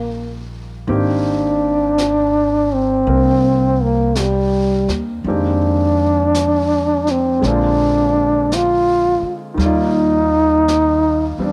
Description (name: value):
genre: jazz ballad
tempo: 55 BPM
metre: 4/4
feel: swing 67% on 8ths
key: Eb major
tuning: A4 = 439 Hz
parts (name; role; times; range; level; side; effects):
- warm trombone; melody; 0.0-11.5 s; G3 to F4; -18 LUFS; equal; none
- warm concert grand piano; accompaniment; 0.0-11.5 s; Db3 to D5; -26 LUFS; equal; none
- upright bass; bass; 0.0-11.5 s; Ab1 to F2; -24 LUFS; equal; none
- jazz brush drum kit; drums; 0.9-11.5 s; brushed snare drum, hi-hat, snare drum; -34 LUFS; equal; none
room: light reverb, small room ambience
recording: none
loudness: -16 LUFS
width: mono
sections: 0.0-11.5 A section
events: none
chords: 0.0 Eb9; 0.9 Abmaj9; 5.2 Fm11; 7.4 Bb9; 9.6 Ebmaj9